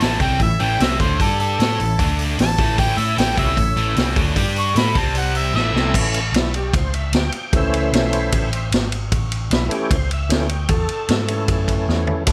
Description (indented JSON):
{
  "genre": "blues rock power trio and southern rock",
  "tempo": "152 BPM",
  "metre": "4/4",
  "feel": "straight",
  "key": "A major",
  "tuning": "A4 = 441 Hz",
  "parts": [
    { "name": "mellow harmonica", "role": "melody", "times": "0.0-5.9 s", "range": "A4 to C#6", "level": "-25 LUFS", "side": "equal", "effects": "overdrive, slapback echo" },
    { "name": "overdriven tonewheel organ", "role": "sustained chords", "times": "0.0-12.3 s", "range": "E3 to G5", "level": "-28 LUFS", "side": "equal", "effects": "chorus vibrato, slow rotary speaker" },
    { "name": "distorted electric guitar", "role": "riff", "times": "0.0-5.9 s", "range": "A2 to A4", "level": "-25 LUFS", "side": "equal", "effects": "distortion" },
    { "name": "vintage muted picked electric bass", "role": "bass", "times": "0.0-12.3 s", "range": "G#1 to A2", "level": "-24 LUFS", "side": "equal", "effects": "none" },
    { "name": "vintage drum kit", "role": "drums", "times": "0.0-12.3 s", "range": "crash cymbal, hi-hat, kick drum, ride cymbal, snare drum, splash cymbal, toms", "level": "-23 LUFS", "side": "equal", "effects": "none" }
  ],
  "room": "light reverb",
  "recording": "none",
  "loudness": "-19 LUFS",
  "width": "mono",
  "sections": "0.0-5.9 A section; 5.9-12.3 B section",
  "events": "drum fill 5.6-5.9, 11.9-12.3; tonewheel organ solo 5.9-12.3",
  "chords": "0.0 A; 1.2 G5; 1.6 A; 2.0 D5; 2.4 A; 4.4 G5; 4.8 A5; 5.0 C5; 5.6 A",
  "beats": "0.00 0.40 0.80 | 1.19 1.59 1.99 2.38 | 2.78 3.18 3.57 3.97 | 4.37 4.76 5.16 5.55 | 5.95 6.34 6.74 7.14 | 7.53 7.93 8.32 8.72 | 9.11 9.51 9.90 10.30 | 10.69 11.09 11.48 11.88 | 12.27"
}